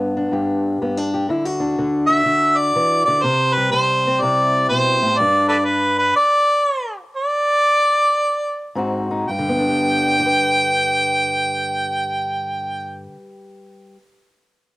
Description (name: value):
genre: acoustic country blues, solo or duo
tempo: 109-123 BPM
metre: 4/4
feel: swing 65% on 8ths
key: G major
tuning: A4 = 440 Hz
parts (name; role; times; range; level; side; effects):
- fingerpicked steel-string acoustic guitar; accompaniment; 0.0-14.0 s; G2 to B4; -21 LUFS; left 1 dB; cassette tape
- warm harmonica; melody; 2.1-13.0 s; A4 to G5; -16 LUFS; equal; cassette tape
room: moderate booth ambience, RT60 0.2 s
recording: home recording on cassette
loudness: -16 LUFS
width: side -19 dB against mid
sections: 0.0-9.3 A section; 9.3-13.7 B section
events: slowing down 5.2-9.3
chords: 0.0 G; 1.3 D; 3.2 C; 5.2 G5; 8.7 Ab7; 9.3 G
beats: 0.30 0.79 | 1.28 1.77 2.25 2.75 | 3.23 3.72 4.21 4.70 | 5.19 5.68 6.18 6.67 | 7.18 7.69 8.21 8.75 | 9.29 9.84 10.40 10.95 | 11.50 12.05 12.61 13.16